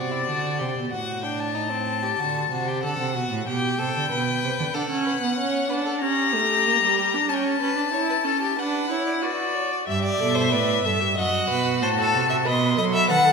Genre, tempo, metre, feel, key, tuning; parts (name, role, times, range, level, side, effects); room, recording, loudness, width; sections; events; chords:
classical, baroque-style fugue for string quartet; 94 BPM; 4/4; straight; G major, E minor from 9.9 s; A4 = 440 Hz
rich violin; melody; 0.0-13.3 s; D5 to C6; -25 LUFS; left 7 dB
rich violin; second line; 0.0-13.3 s; C4 to F#5; -26 LUFS; left 1 dB
rich cello; bass; 0.0-4.7, 9.9-13.3 s; F#2 to F#3; -26 LUFS; right 5 dB
rich viola; accompaniment; 4.7-13.3 s; G3 to B4; -26 LUFS; right 3 dB
wet concert hall reverb, RT60 1.7 s; minimal, uncompressed stereo recording; -21 LUFS; side -5 dB against mid
0.0-9.9 A section; 9.9-13.3 B section
0.0 G5; 0.9 F#dim/A; 2.2 D7; 3.5 G/B; 4.7 D; 6.0 Gmadd9; 7.3 A7/C#; 8.6 D; 9.9 Em/G; 11.2 D#dim7/F#; 12.5 B7